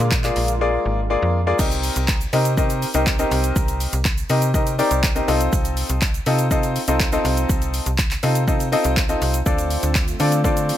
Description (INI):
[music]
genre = dance-pop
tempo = 122 BPM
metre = 4/4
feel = straight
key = C dorian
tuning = A4 = 440 Hz
[part]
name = clear grand piano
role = accompaniment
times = 0.0-10.7 s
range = Bb3 to Eb5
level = -21 LUFS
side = left 2 dB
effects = sidechain pumping
[part]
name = soft supersaw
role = sustained chords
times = 0.0-1.6, 9.5-10.8 s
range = D3 to F4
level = -30 LUFS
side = right 2 dB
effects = sidechain pumping
[part]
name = slap-like FM bass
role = bass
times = 0.0-10.7 s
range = Ab1 to D3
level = -22 LUFS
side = equal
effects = sidechain pumping
[part]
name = deep house drum kit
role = drums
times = 0.1-10.8 s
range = crash cymbal, handclaps, hi-hat, kick drum, shaker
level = -22 LUFS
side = equal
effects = none
[part]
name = tube shaker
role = percussion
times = 0.1-10.7 s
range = none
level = -35 LUFS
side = right 13 dB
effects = none
[sound]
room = little or no reverb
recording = none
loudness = -17 LUFS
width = side -12 dB against mid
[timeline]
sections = 0.0-1.6 A section; 1.6-10.8 B section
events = drums muted 0.6-1.6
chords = 0.0 Bb7; 1.6 Cm7; 5.3 F7/C; 9.5 Dm7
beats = 0.12 0.61 1.10 | 1.59 2.08 2.58 3.07 | 3.56 4.05 4.54 5.04 | 5.53 6.02 6.51 7.00 | 7.49 7.99 8.48 8.97 | 9.46 9.95 10.45